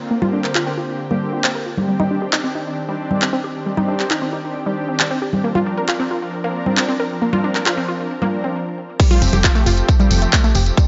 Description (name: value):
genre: uplifting trance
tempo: 135 BPM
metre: 4/4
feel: straight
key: Bb major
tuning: A4 = 440 Hz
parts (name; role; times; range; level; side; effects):
- lush unison pad; sustained chords; 0.0-10.9 s; D3 to Bb4; -26 LUFS; equal; chorus, sidechain pumping
- unison pluck; arpeggios; 0.1-10.8 s; G3 to C5; -25 LUFS; equal; sidechain pumping, delay
- big-room dance drum kit; drums; 0.2-10.9 s; congas, crash cymbal, handclaps, hi-hat; -23 LUFS; equal; overdrive, sidechain pumping on perc, sidechain pumping on hats, sidechain pumping on cymbals
- electronic kick drum; drums; 9.0-10.9 s; none; -16 LUFS; equal; overdrive
- tambourine; percussion; 9.0-10.9 s; none; -30 LUFS; equal; none
- solid FM bass; bass; 9.2-10.7 s; F1; -19 LUFS; equal; tube saturation, sidechain pumping
room: light reverb, digital ambience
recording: nothing above 7.7 kHz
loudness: -19 LUFS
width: mono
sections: 0.0-9.0 A section; 9.0-10.9 B section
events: filter sweep on synth arpeggio sound 0.0-9.0; stop 8.6-9.0; drop 9.0-10.9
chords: 0.0 Bbadd9; 1.9 Cmadd9; 5.4 Bbadd9; 9.0 Fadd9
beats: | 0.11 0.55 1.00 1.44 | 1.89 2.33 2.77 3.22 | 3.66 4.11 4.55 5.00 | 5.44 5.89 6.33 6.78 | 7.22 7.66 8.11 8.55 | 9.00 9.44 9.89 10.33 | 10.78